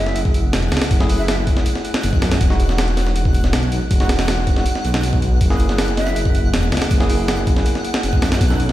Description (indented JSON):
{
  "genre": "drum and bass, jungle",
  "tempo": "160 BPM",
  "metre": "4/4",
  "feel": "straight",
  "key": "unclear",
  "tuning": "A4 = 440 Hz",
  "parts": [
    { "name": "breathy mellow jazz flute", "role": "melody", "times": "0.0-1.3, 6.0-6.2 s", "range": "E5", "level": "-29 LUFS", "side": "equal", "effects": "vintage 12-bit sampler grit, dub echo" },
    { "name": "tine electric piano", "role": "stabs", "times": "0.0-8.7 s", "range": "G#3 to A4", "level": "-25 LUFS", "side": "left 1 dB", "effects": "dub echo" },
    { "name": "detuned saw bass", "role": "bass", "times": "0.0-8.7 s", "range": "E1 to F#2", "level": "-20 LUFS", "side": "equal", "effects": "none" },
    { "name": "twinkling granular texture", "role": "texture", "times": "0.0-8.7 s", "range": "F#5", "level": "-30 LUFS", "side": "right 1 dB", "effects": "built-in reverb" },
    { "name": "breakbeat sampler-style drum kit", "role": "drums", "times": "0.1-8.7 s", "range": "hi-hat, kick drum, snare drum", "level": "-18 LUFS", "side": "equal", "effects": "none" }
  ],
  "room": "little or no reverb",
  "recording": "played on a big sound system in a bare room, stone room reverb",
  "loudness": "-15 LUFS",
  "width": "side -14 dB against mid",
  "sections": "0.0-8.7 A section",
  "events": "none",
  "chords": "0.0 F#m7; 2.4 Emaj7; 5.4 F#7"
}